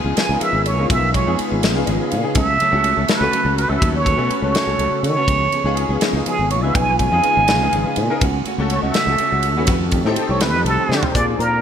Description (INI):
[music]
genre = electric jazz fusion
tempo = 82 BPM (dotted quarters)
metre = 6/8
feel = straight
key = Db mixolydian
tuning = A4 = 440 Hz
[part]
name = clear baby grand piano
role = accompaniment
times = 0.0-11.6 s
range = A3 to F5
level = -25 LUFS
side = left 4 dB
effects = ensemble chorus
[part]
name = glassy FM pad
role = sustained chords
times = 0.0-11.6 s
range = Db3 to A4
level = -28 LUFS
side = left 1 dB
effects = ensemble chorus, built-in reverb
[part]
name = sustaining fretless electric bass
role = bass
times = 0.0-11.6 s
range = Ab1 to Eb3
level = -21 LUFS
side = equal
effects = none
[part]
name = mellow electric guitar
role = stabs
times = 0.1-11.3 s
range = Eb3 to A4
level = -27 LUFS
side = right 1 dB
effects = lush chorus
[part]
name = trumpet with plunger mute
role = melody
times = 0.2-11.6 s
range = Ab4 to Ab5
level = -20 LUFS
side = right 3 dB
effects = none
[part]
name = modern studio drum kit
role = drums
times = 0.2-11.5 s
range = hi-hat, kick drum, ride cymbal, snare drum, toms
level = -23 LUFS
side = equal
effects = none
[part]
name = mellow hollow jazz flute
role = second line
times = 11.2-11.6 s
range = Bb5 to D6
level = -23 LUFS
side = left 4 dB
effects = none
[sound]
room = moderate lush hall reverb, RT60 1.8 s, studio reverb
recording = bright 1980s-style digital production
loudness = -15 LUFS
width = side -8 dB against mid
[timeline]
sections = 0.0-11.1 A section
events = muted trumpet solo 0.0-11.1; grand piano fill 1.6-2.4; drum fill 10.9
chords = 0.0 Db7; 2.4 Gbm/Db; 5.3 Db7; 8.2 Gbm/Db; 9.7 F9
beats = 0.17 | 0.90 1.63 | 2.36 3.09 | 3.83 4.56 | 5.29 6.02 | 6.75 7.49 | 8.22 8.95 | 9.68 10.42 | 11.15